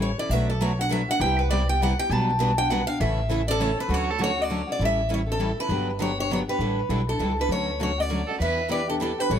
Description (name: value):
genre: acoustic string swing (jazz manouche)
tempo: 200 BPM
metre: 3/4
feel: swing 58% on 8ths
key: D major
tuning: A4 = 439 Hz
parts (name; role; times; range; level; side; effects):
- picked steel-string acoustic guitar; melody; 0.0-9.4 s; A4 to A5; -26 LUFS; equal; tape echo
- picked steel-string acoustic guitar; accompaniment; 0.0-9.4 s; B2 to A4; -28 LUFS; left 3 dB; none
- upright bass; bass; 0.0-9.4 s; G1 to E2; -27 LUFS; equal; none
- picked steel-string acoustic guitar; accompaniment; 0.3-9.4 s; B2 to B4; -32 LUFS; right 6 dB; none
- warm violin; second line; 3.9-4.4, 8.3-8.8 s; F#4 to B4; -29 LUFS; right 6 dB; none
room: light reverb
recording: close, detailed microphones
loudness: -22 LUFS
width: side -9 dB against mid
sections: 0.0-3.9 A section; 3.9-9.4 B section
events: steel-string acoustic guitar solo 0.0-3.9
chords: 0.3 Bm7; 1.2 Cmaj7; 2.1 Gmaj7/B; 3.0 A; 3.9 Dmaj7; 4.8 A7; 5.7 Gmaj7; 6.6 A9sus4; 7.5 Dmaj7; 8.4 Em7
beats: 0.00 | 0.30 0.60 0.90 | 1.20 1.50 1.80 | 2.10 2.40 2.70 | 3.00 3.30 3.60 | 3.90 4.20 4.50 | 4.80 5.10 5.40 | 5.70 6.00 6.30 | 6.60 6.90 7.20 | 7.50 7.80 8.10 | 8.40 8.70 9.00 | 9.30